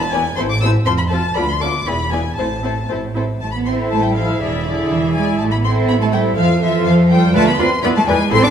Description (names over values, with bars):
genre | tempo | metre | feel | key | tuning
quick classical-period movement for string orchestra | 122 BPM | 2/4 | straight | A minor | A4 = 436 Hz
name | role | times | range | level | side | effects
warm chamber violin section | melody | 0.0-8.4 s | C5 to E6 | -23 LUFS | left 5 dB | none
rich chamber double bass section | bass | 0.0-8.4 s | E1 to F2 | -20 LUFS | right 1 dB | none
warm chamber cello section | bass | 0.0-8.5 s | D2 to D4 | -19 LUFS | right 3 dB | none
warm studio violin section | second line | 0.1-8.5 s | G#4 to D6 | -22 LUFS | left 4 dB | none
rich chamber viola section | accompaniment | 0.1-8.4 s | B3 to B4 | -21 LUFS | right 1 dB | none
room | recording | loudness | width
wet recital hall reverb, RT60 1.6 s | minimal, uncompressed stereo recording | -14 LUFS | side -8 dB against mid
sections
0.0-3.4 A section; 3.4-8.5 B section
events
none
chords
0.4 Am; 0.9 F; 1.4 Bdim/D; 1.9 E7; 2.4 Am; 4.4 E7; 5.4 Am; 6.4 F; 7.3 Bdim; 7.8 E